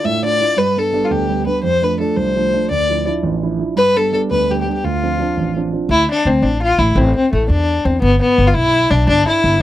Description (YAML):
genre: celtic folk, Celtic jig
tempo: 113 BPM (dotted quarters)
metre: 6/8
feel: straight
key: D dorian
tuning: A4 = 440 Hz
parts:
  - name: dark fiddle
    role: melody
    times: 0.0-9.6 s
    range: A3 to E5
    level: -15 LUFS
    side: left 2 dB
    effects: none
  - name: dark concert grand piano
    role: accompaniment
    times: 0.0-5.9 s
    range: A1 to F4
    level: -18 LUFS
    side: right 4 dB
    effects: none
  - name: upright bass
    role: bass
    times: 5.9-9.6 s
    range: G1 to E2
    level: -16 LUFS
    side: equal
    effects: none
room: light reverb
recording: dry, close 1970s-style studio recording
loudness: -13 LUFS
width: side -13 dB against mid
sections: 0.0-5.9 A section; 5.9-9.6 B section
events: none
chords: 0.0 Dmadd9; 0.6 G; 1.6 F6; 2.7 Dmadd9; 3.8 G; 4.8 Dm7; 5.9 D5; 7.0 A5; 8.0 Em/G; 9.1 G5